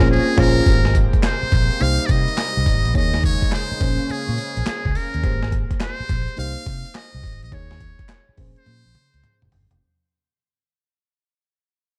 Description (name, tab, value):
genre	R&B, new jack swing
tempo	105 BPM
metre	4/4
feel	swing 66% on 16ths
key	Bb dorian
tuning	A4 = 439 Hz
part	trumpet with metal mute	melody	0.0-9.4 s	Ab4 to F5	-28 LUFS	equal	none
part	mellow FM electric piano	accompaniment	0.0-9.8 s	Bb3 to Db5	-28 LUFS	equal	chorus
part	chorused pulse-width pad	sustained chords	0.0-5.2 s	C3 to G5	-33 LUFS	equal	none
part	vintage muted fingered electric bass	bass	0.0-9.8 s	F1 to C3	-24 LUFS	equal	none
part	breakbeat sampler-style drum kit	drums	0.4-9.8 s	crash cymbal, handclaps, hi-hat, kick drum, snare drum, tambourine, toms	-23 LUFS	equal	none
room	light reverb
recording	dark, warm production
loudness	-20 LUFS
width	mono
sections	0.7-9.8 A section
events	band accent 0.0-0.7; break 0.1-0.7; fade-out 0.7-9.8; drum fill 8.7-9.8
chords	0.0 Bbm9; 0.7 Abmaj9; 1.8 Cm7; 2.9 Eb7sus4; 3.8 Bbm9; 5.2 Abmaj9; 6.4 Cm7; 7.5 Eb7sus4; 8.4 Bbm9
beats	0.09 | 0.66 1.24 1.81 2.38 | 2.95 3.52 4.09 4.66 | 5.24 5.81 6.38 6.95 | 7.52 8.09 8.66 9.23